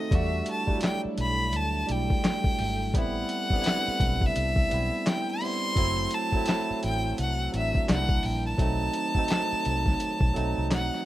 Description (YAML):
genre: R&B, neo-soul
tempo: 85 BPM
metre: 4/4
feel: swing 62% on 16ths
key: E minor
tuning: A4 = 440 Hz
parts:
  - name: bright violin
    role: melody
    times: 0.0-11.1 s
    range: D#5 to C6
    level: -29 LUFS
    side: equal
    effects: none
  - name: barky tine electric piano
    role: accompaniment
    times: 0.0-11.1 s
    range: F#3 to A4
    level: -31 LUFS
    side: right 2 dB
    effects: overdrive, wide subtle chorus
  - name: string machine, full ensemble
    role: sustained chords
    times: 0.0-11.1 s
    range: D#3 to Bb4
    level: -40 LUFS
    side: equal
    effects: none
  - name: vintage muted fingered electric bass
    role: bass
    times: 0.1-10.9 s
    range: F#1 to E2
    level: -30 LUFS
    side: equal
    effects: none
  - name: boom bap sampler-style drum kit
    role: drums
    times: 0.1-11.0 s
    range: handclaps, hi-hat, kick drum, snare drum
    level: -27 LUFS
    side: equal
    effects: none
room: light reverb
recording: rough home demo mix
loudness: -24 LUFS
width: side -14 dB against mid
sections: 0.0-11.1 A section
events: none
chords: 0.1 Em11; 2.9 Am9; 5.8 F#m7b5; 7.9 C9; 8.6 B7b9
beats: | 0.11 0.82 1.52 2.23 | 2.94 3.64 4.35 5.05 | 5.76 6.46 7.17 7.88 | 8.58 9.29 9.99 10.70